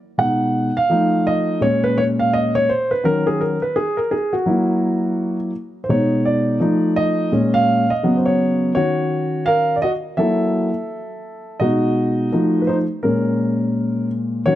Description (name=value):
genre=hip hop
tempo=84 BPM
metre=4/4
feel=swing 61% on 16ths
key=Eb minor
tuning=A4 = 440 Hz
part: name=dark grand piano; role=solo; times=0.2-14.6 s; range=Bb2 to F#5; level=-16 LUFS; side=equal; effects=none
room=light reverb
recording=dark, warm production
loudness=-16 LUFS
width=side -13 dB against mid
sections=0.0-8.8 A section; 8.8-14.6 B section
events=grand piano solo 0.0-8.8, 8.8-14.6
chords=0.2 B6; 0.9 F7; 1.6 Bbm7; 3.0 Ebm7; 4.5 Gb7; 5.9 B69; 6.6 F7; 7.3 Bbm7; 8.0 Db7sus4; 8.8 Ebm7; 10.2 Gb7#9; 11.6 B6; 12.3 F7; 13.0 Bbm7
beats=| 0.18 0.90 1.61 2.32 | 3.04 3.75 4.47 5.18 | 5.89 6.61 7.32 8.04 | 8.75 9.47 10.18 10.89 | 11.61 12.32 13.04 13.75 | 14.47